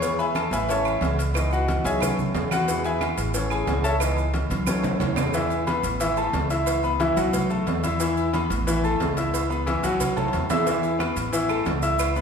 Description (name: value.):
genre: latin, salsa.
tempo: 180 BPM.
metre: 4/4.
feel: straight.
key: E major.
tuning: A4 = 440 Hz.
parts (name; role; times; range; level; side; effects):
bright baby grand piano; accompaniment; 0.0-12.2 s; D#3 to E6; -24 LUFS; left 2 dB; none.
upright bass; bass; 0.0-12.2 s; A1 to E2; -28 LUFS; equal; none.
agogo bells and timbales; percussion; 0.0-12.2 s; none; -31 LUFS; right 5 dB; none.
congas; percussion; 0.0-12.2 s; none; -32 LUFS; equal; none.
cowbell and bongos; percussion; 0.0-12.2 s; none; -33 LUFS; left 2 dB; none.
maracas; percussion; 0.0-12.2 s; none; -38 LUFS; right 8 dB; none.
claves; percussion; 0.4-5.3, 11.0-12.2 s; none; -37 LUFS; right 6 dB; none.
room: wet recital hall reverb, RT60 1.6 s.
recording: recorded in a church or concert hall.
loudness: -21 LUFS.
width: side -6 dB against mid.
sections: 0.0-5.3 A section; 5.3-12.2 B section.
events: grand piano solo 0.0-5.3; drum fill 4.5-5.3, 10.2-10.7.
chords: 0.0 E; 0.7 A; 1.4 C#m7; 2.0 B7; 2.7 E; 3.3 A; 4.0 C#m7; 4.7 B7; 5.3 E5; 6.0 A; 6.7 C#m7; 7.3 B5; 8.0 E5; 8.7 A; 9.3 C#m7; 10.0 B5; 10.7 E5; 11.3 A.